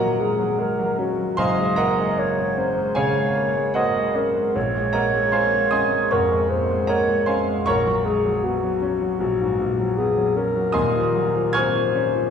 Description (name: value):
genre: classical, impressionist duo for clarinet and grand piano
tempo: 77 BPM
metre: 4/4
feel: rubato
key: Eb dorian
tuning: A4 = 440 Hz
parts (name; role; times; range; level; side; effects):
- dark clarinet; melody; 0.0-12.3 s; Gb4 to Eb5; -22 LUFS; left 2 dB; none
- clear concert grand piano; accompaniment; 0.0-12.3 s; Eb1 to Ab6; -21 LUFS; right 1 dB; none
room: wet recital hall reverb, RT60 1.6 s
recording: heard from further back in the room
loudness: -19 LUFS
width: side -7 dB against mid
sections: 0.0-12.3 A section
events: none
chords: 0.0 Ebm7; 1.4 Gb69; 4.6 Bbm7; 7.7 Db7sus4/Bb; 10.8 Ebm9